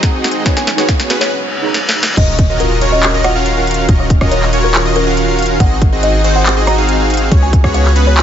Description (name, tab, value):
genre	future bass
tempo	140 BPM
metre	4/4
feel	half-time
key	Eb minor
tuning	A4 = 440 Hz
part	kalimba	melody	0.0-8.2 s	Bb4 to Bb5	-20 LUFS	left 1 dB	sidechain pumping, low-pass filter, digital delay
part	soft round pluck	accompaniment	0.0-2.2 s	Eb4 to Bb5	-25 LUFS	right 2 dB	none
part	ethereal airy pad	sustained chords	0.0-8.2 s	Db3 to Gb4	-25 LUFS	equal	ensemble chorus, built-in reverb, phaser, sidechain pumping
part	supersaw chords	riff	0.0-8.2 s	Cb4 to F5	-16 LUFS	right 1 dB	sidechain pumping
part	warm 808-style bass	bass	0.0-8.2 s	Eb1 to Db2	-15 LUFS	equal	sidechain pumping, high-pass filter
part	electronic kick drum	drums	0.0-7.7 s	none	-12 LUFS	equal	none
part	trap drum kit	drums	0.0-8.2 s	crash cymbal, handclaps, hi-hat, rim click, snare drum	-18 LUFS	equal	high-pass filter on snare, high-pass filter on hats, high-pass filter on cymbals
part	reverse cymbal and impact	sound effects	1.4-3.9 s	none	-22 LUFS	left 1 dB	none
part	airy dreamy lead	arpeggios	2.2-8.2 s	Cb5 to F5	-23 LUFS	right 1 dB	chorus, sidechain pumping
room	light reverb, digital ambience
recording	nothing above 7.7 kHz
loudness	-10 LUFS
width	side -9 dB against mid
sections	0.0-2.2 A section; 2.2-8.2 B section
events	build-up 0.0-2.2; drum fill 0.0-1.3, 1.7-2.2; filter sweep on kalimba 0.0-2.2; reverse cymbal 1.4-2.2; drop 2.2-8.2; impact 2.2-3.9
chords	0.5 Db7sus4; 2.2 Ebm9; 5.6 Ab7; 7.3 Db7sus4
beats	0.03 | 0.46 0.89 1.31 1.74 | 2.17 2.60 3.03 3.46 | 3.89 4.32 4.74 5.17 | 5.60 6.03 6.46 6.89 | 7.32 7.74 8.17